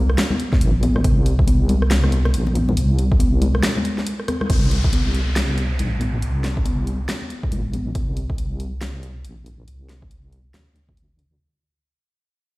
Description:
deep dubstep; 139 BPM; 4/4; swing 60% on 16ths, half-time; A4 = 442 Hz
deep soft wobble bass; bass; 0.0-11.4 s; Bb1 to D2; -20 LUFS; equal; chorus
deep house drum kit; drums; 0.1-11.3 s; hi-hat, rim click, snare drum; -25 LUFS; equal; studio reverb
congas; percussion; 0.3-7.8 s; -25 LUFS; left 2 dB; dub echo
electronic kick drum; drums; 0.5-11.0 s; -20 LUFS; equal; studio reverb
downlifter; sound effects; 4.5-8.0 s; -32 LUFS; equal
little or no reverb; played on a big sound system in a bare room, stone room reverb; -18 LUFS; side -20 dB against mid
0.0-4.5 A section; 4.5-11.4 B section
drop 0.0-4.5; break 3.6-4.5; drum fill 4.2-4.5; band accent 4.4; fade-out 4.5-11.4
0.18 0.61 | 1.04 1.48 1.91 2.34 | 2.77 3.20 3.63 4.07 | 4.50 4.93 5.36 5.79 | 6.22 6.66 7.09 7.52 | 7.95 8.38 8.81 9.25 | 9.68 10.11 10.54 10.97

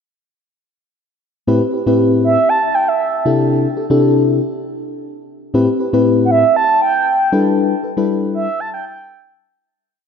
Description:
funk; 118 BPM; 4/4; straight; A minor; A4 = 439 Hz
mellow FM electric piano; accompaniment; 1.5-8.5 s; A2 to B4; -15 LUFS; left 2 dB; chorus
mellow horn-like synth lead; melody; 2.2-9.3 s; E5 to A5; -15 LUFS; right 3 dB; chorus, ping-pong delay
wet plate reverb, RT60 3.0 s; dreamy mix soaked in reverb; -13 LUFS; side -7 dB against mid
1.5-9.6 verse
fade-out 7.6-9.6
1.5 Am7; 3.3 C69; 5.5 Am7; 7.3 G6
| 1.48 1.99 2.50 3.00 | 3.51 4.02 4.53 5.04 | 5.54 6.05 6.56 7.07 | 7.58 8.09 8.60 9.11

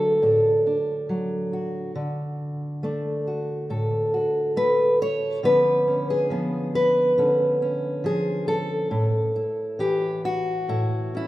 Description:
folk, solo fingerstyle acoustic guitar; 69 BPM; 4/4; rubato; D major; A4 = 440 Hz
fingerpicked steel-string acoustic guitar; solo; 0.0-11.3 s; A2 to C#5; -21 LUFS; equal
moderate recital hall reverb, RT60 1.6 s; recorded in a church or concert hall, lossy compression artefacts; -21 LUFS; side -16 dB against mid
0.0-11.3 A section
0.0 D; 5.4 C#7/D; 8.9 A
0.24 1.11 | 1.97 2.84 3.70 4.57 | 5.44 6.31 7.18 8.04 | 8.92 9.79 10.69

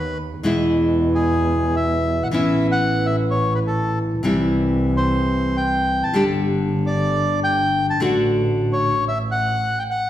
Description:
tango; 127 BPM; 4/4; rubato; A4 = 440 Hz
bandoneon; melody; 0.0-10.1 s; G#4 to A5; -22 LUFS; left 1 dB
nylon-string guitar; accompaniment; 0.0-8.9 s; B2 to G4; -20 LUFS; left 1 dB
rich double bass; bass; 0.0-9.8 s; G1 to E2; -24 LUFS; right 2 dB
wet recital hall reverb, RT60 1.4 s; recorded in a church or concert hall; -17 LUFS; side -12 dB against mid
0.0-10.1 A section
0.4 E; 2.3 Aadd9; 4.2 C; 6.1 G5; 8.0 D/A; 8.9 A6
| 0.44 0.91 1.38 1.85 | 2.33 2.80 3.28 3.76 | 4.24 4.71 5.19 5.66 | 6.13 6.60 7.07 7.54 | 8.01 8.48 8.95 9.42 | 9.88

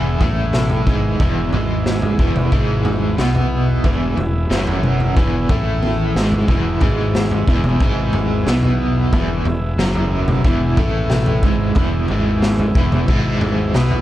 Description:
psychedelic rock; 91 BPM; 4/4; straight; E major; A4 = 442 Hz
combo organ; sustained chords; 0.0-14.0 s; B3 to E5; -28 LUFS; right 2 dB
overdriven electric guitar; riff; 0.0-14.0 s; E2 to B3; -20 LUFS; right 1 dB; tremolo
fuzz fingered electric bass; bass; 0.0-14.0 s; E1 to B1; -21 LUFS; equal; overdrive
raw garage drum kit; drums; 0.2-14.0 s; kick drum, snare drum, toms; -18 LUFS; equal
light reverb, small room ambience; -15 LUFS; side -14 dB against mid
0.0-14.0 A section
drum fill 5.8-6.5
0.0 E
0.55 | 1.21 1.87 2.53 3.19 | 3.85 4.51 5.17 5.83 | 6.49 7.15 7.81 8.47 | 9.13 9.79 10.45 11.11 | 11.77 12.43 13.09 13.75

